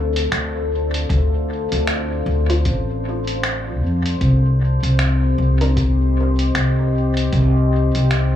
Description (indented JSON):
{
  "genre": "ambient dub",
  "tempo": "77 BPM",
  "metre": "4/4",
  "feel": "swing 60% on 16ths",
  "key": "C dorian",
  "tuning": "A4 = 442 Hz",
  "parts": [
    { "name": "deep dark ambient pad", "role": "sustained chords", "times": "0.0-8.4 s", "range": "C4 to F5", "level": "-23 LUFS", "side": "left 2 dB", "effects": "chorus, built-in reverb" },
    { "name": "upright bass", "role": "bass", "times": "0.0-8.4 s", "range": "A1 to F2", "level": "-17 LUFS", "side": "equal", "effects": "tube saturation" },
    { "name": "lo-fi sampler-style drum kit", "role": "drums", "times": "0.2-8.3 s", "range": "finger snaps, hi-hat", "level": "-26 LUFS", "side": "equal", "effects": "dub echo" },
    { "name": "electronic kick drum", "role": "drums", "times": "1.1-7.5 s", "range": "none", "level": "-23 LUFS", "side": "equal", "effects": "none" },
    { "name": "filtered dub chord stab", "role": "stabs", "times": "2.5-5.7 s", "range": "D4 to C5", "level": "-29 LUFS", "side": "right 1 dB", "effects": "lush chorus, dub echo" }
  ],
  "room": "light reverb, digital ambience",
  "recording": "small room ambience",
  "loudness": "-16 LUFS",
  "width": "side -11 dB against mid",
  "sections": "0.0-8.4 A section",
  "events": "none",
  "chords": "0.0 Dm7; 4.2 Cm",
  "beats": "0.32 | 1.10 1.88 2.65 3.43 | 4.21 4.99 5.77 6.55 | 7.33 8.11"
}